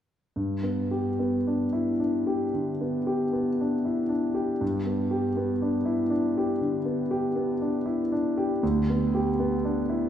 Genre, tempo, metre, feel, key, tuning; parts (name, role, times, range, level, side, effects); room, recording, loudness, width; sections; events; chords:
classical; 53-61 BPM; 4/4; rubato; G major; A4 = 440 Hz
warm concert grand piano; accompaniment; 0.4-10.1 s; D2 to G4; -24 LUFS; equal
wet church reverb, RT60 3.5 s; recorded in a church or concert hall; -24 LUFS; side -9 dB against mid
0.4-10.1 A section
0.4 G; 8.6 G/D